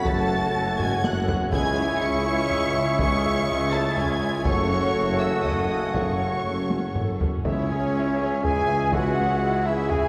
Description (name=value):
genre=cinematic, epic orchestral film score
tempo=122 BPM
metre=3/4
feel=straight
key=C# minor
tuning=A4 = 440 Hz
part: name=warm symphonic violin section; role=melody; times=0.0-10.1 s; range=E5 to C#7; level=-35 LUFS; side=equal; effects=none
part: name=warm symphonic violin section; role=second line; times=0.0-10.1 s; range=C#5 to C#6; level=-34 LUFS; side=equal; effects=none
part: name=warm symphonic viola section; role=accompaniment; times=0.0-10.1 s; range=G#3 to C#5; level=-36 LUFS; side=equal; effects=none
part: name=dark trombone section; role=sustained chords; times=0.0-10.1 s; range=C#3 to A3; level=-34 LUFS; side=equal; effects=none
part: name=mellow French horn section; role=sustained chords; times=0.0-10.1 s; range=C#3 to G#4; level=-35 LUFS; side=equal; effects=none
part: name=warm woodwind section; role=sustained chords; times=0.0-10.1 s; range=C#4 to F#5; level=-36 LUFS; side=equal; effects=none
part: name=mellow trumpet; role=stabs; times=0.0-10.1 s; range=C#4 to G#4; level=-32 LUFS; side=equal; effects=none
part: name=rich studio cello section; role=bass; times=0.1-10.1 s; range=C#2 to F#2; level=-34 LUFS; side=equal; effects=none
part: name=rich symphonic double bass section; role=bass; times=0.1-10.1 s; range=F#1 to C#2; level=-34 LUFS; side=equal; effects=none
part: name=warm tuba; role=bass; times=0.1-10.1 s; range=F#1 to C#2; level=-34 LUFS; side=equal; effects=none
part: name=taiko ensemble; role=drums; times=0.1-10.1 s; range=none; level=-31 LUFS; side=equal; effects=none
part: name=timpani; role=percussion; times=1.5-2.2, 7.4-8.2 s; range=C#3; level=-38 LUFS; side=equal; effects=none
part: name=mellow hollow silver concert flute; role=second line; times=7.5-10.1 s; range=C#5 to G#5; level=-32 LUFS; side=equal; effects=none
room=wet scoring stage reverb, RT60 1.9 s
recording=heard from further back in the room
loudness=-24 LUFS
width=mono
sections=0.0-7.5 A section; 7.5-10.1 B section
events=drum fill 0.8-1.5, 6.7-7.5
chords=0.0 F#m; 1.5 C#m; 4.5 F#m; 7.5 C#m